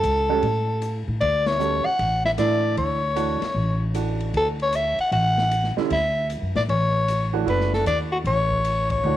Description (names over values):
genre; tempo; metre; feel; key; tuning
modal jazz; 153 BPM; 4/4; swing 66% on 8ths; D major; A4 = 441 Hz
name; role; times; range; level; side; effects
growling soprano saxophone; melody; 0.0-9.2 s; F#4 to F#5; -22 LUFS; left 1 dB; none
upright bass; bass; 0.0-9.2 s; F#1 to A2; -25 LUFS; equal; none
open jazz drum kit; drums; 0.0-9.0 s; hi-hat, kick drum, ride cymbal, snare drum; -36 LUFS; left 5 dB; none
clear upright piano; accompaniment; 0.3-9.2 s; D3 to A4; -28 LUFS; right 10 dB; none
room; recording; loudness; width
light reverb, small room ambience; 1960s-style stereo; -20 LUFS; side -12 dB against mid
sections
0.0-9.2 A section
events
band accent 1.4, 8.8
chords
0.0 Dmaj9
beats
0.04 0.43 0.82 | 1.21 1.60 2.00 2.39 | 2.78 3.17 3.56 3.95 | 4.34 4.74 5.13 5.52 | 5.91 6.30 6.69 7.08 | 7.47 7.87 8.26 8.65 | 9.04